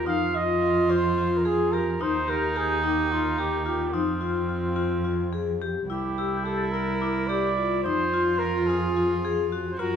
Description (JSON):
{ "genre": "contemporary instrumental, chamber music in an uneven meter", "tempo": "216 BPM (eighths)", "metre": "7/8", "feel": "straight", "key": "F minor", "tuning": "A4 = 441 Hz", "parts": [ { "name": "warm flugelhorn", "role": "melody", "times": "0.0-10.0 s", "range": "F4 to F5", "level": "-29 LUFS", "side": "right 2 dB", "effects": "none" }, { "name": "dark cello", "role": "bass", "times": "0.0-10.0 s", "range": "C2 to Gb2", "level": "-30 LUFS", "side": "right 3 dB", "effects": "none" }, { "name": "warm viola", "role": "second line", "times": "0.1-10.0 s", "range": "C4 to Gb4", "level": "-28 LUFS", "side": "right 3 dB", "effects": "none" }, { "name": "vibraphone with medium hard mallets", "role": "arpeggios", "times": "0.1-10.0 s", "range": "Eb4 to Ab4", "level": "-28 LUFS", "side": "left 7 dB", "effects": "none" }, { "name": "celesta", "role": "texture", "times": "6.2-8.4 s", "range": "D6 to A6", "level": "-36 LUFS", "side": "left 6 dB", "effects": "none" } ], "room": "moderate scoring stage reverb, RT60 2.0 s", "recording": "recorded in a church or concert hall", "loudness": "-23 LUFS", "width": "side -8 dB against mid", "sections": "0.0-5.9 A section; 5.9-10.0 B section", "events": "none", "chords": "0.1 F7(no3); 2.0 Eb; 3.9 F5; 5.9 C7; 7.9 Fm" }